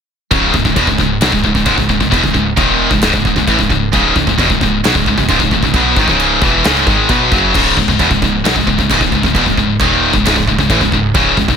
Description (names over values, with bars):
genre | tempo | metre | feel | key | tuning
heavy metal | 133 BPM | 4/4 | straight | C# minor | A4 = 441 Hz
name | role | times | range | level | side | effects
heavy high-gain guitar | riff | 0.3-11.6 s | C#2 to B3 | -14 LUFS | left 13 dB | distortion
high-gain distorted guitar | riff | 0.3-11.6 s | C#2 to B3 | -15 LUFS | right 11 dB | distortion
plucky analog bass | bass | 0.3-11.6 s | C#1 to B1 | -19 LUFS | equal | none
big rock drum kit | drums | 0.3-11.6 s | china cymbal, crash cymbal, kick drum, snare drum | -17 LUFS | equal | none
room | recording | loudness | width
studio reverb | none | -10 LUFS | side -7 dB against mid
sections
0.3-11.6 A section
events
none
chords
0.3 C#m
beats
| 0.32 0.78 1.23 1.68 | 2.13 2.58 3.03 3.48 | 3.94 4.39 4.84 5.29 | 5.74 6.20 6.65 7.10 | 7.55 8.00 8.45 8.90 | 9.35 9.80 10.25 10.70 | 11.15